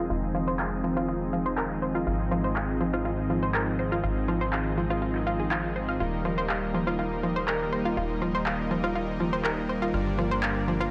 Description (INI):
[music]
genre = progressive house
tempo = 122 BPM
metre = 4/4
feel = straight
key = unclear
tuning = A4 = 440 Hz
[part]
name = warm analog pad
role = sustained chords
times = 0.0-10.9 s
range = D3 to G4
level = -35 LUFS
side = equal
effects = lush chorus
[part]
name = analog pluck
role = arpeggios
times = 0.0-10.9 s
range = F3 to F5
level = -32 LUFS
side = equal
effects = chorus, tape echo
[part]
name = soft supersaw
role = stabs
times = 0.0-10.9 s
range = G2 to Eb5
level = -34 LUFS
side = equal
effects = tape echo
[part]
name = tight sequencer bass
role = bass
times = 0.0-10.9 s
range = Eb1 to Ab1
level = -36 LUFS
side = equal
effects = none
[part]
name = electronic cabasa, rim click and handclaps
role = drums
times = 0.1-10.9 s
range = none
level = -36 LUFS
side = equal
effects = low-pass filter on perc, low-pass filter on snare
[sound]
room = moderate lush hall reverb, RT60 2.0 s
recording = low-pass filter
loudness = -28 LUFS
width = mono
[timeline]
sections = 0.0-10.9 A section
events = filter sweep on synth pluck 0.0-10.9; filter sweep 0.0-10.9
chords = 0.0 Fm7; 2.1 Ab6; 6.0 Eb; 9.9 Gm